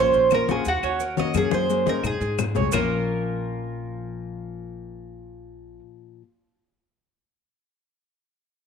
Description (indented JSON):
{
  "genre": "latin, Cuban son and guajira",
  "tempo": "174 BPM",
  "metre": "4/4",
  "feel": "straight",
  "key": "Bb minor",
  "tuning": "A4 = 440 Hz",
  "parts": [
    { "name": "Cuban tres", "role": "melody", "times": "0.0-5.8 s", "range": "Gb4 to Eb5", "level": "-23 LUFS", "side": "right 3 dB", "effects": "none" },
    { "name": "nylon-string guitar", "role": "accompaniment", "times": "0.0-6.2 s", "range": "Bb2 to Ab4", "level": "-30 LUFS", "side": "left 11 dB", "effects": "none" },
    { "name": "Cuban tres", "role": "arpeggios", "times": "0.0-5.8 s", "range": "Bb3 to Db5", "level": "-32 LUFS", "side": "right 9 dB", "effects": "none" },
    { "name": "upright bass", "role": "bass", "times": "0.0-5.8 s", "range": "Bb1 to Eb3", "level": "-31 LUFS", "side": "equal", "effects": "none" },
    { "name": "congas", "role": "percussion", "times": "0.1-2.8 s", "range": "none", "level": "-29 LUFS", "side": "left 9 dB", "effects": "none" },
    { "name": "maracas", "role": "percussion", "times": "0.1-2.8 s", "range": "none", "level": "-39 LUFS", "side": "right 17 dB", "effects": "none" },
    { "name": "claves", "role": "percussion", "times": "0.3-2.8 s", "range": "none", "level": "-33 LUFS", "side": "left 13 dB", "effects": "none" }
  ],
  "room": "wet spring reverb, RT60 1.5 s, small room ambience",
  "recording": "1960s-style stereo with parts hard left and right",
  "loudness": "-21 LUFS",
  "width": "side -6 dB against mid",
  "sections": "0.0-2.7 A section; 2.7-5.5 B section",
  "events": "drum fill 1.3-2.7",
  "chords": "0.0 Bbm; 0.7 Ebm7; 1.3 Gbadd9; 2.0 Ab; 2.7 Bbm"
}